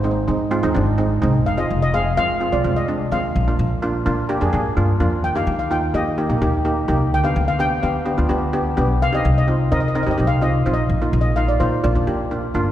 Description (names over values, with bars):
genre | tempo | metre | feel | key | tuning
calypso | 127 BPM | 4/4 | straight | unclear | A4 = 439 Hz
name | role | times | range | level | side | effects
steel pan | melody | 0.0-12.5 s | C5 to G5 | -23 LUFS | left 2 dB | none
steel pan | accompaniment | 0.0-12.7 s | Ab3 to Bb4 | -21 LUFS | right 1 dB | none
upright bass | bass | 0.0-12.7 s | F1 to Eb3 | -20 LUFS | equal | none
room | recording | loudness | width
wet concert hall reverb, RT60 2.3 s | heard from further back in the room | -17 LUFS | side -12 dB against mid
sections
0.0-12.7 A section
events
none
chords
0.0 Ab; 1.5 Fm7; 3.4 Bb; 5.2 Eb; 7.1 G7/D; 9.0 Cm7; 10.9 Bbsus4; 11.8 Bb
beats
0.05 0.52 0.99 | 1.47 1.94 2.41 2.88 | 3.35 3.83 4.30 4.77 | 5.24 5.71 6.18 6.65 | 7.12 7.60 8.07 8.54 | 9.01 9.48 9.96 10.43 | 10.90 11.37 11.84 12.31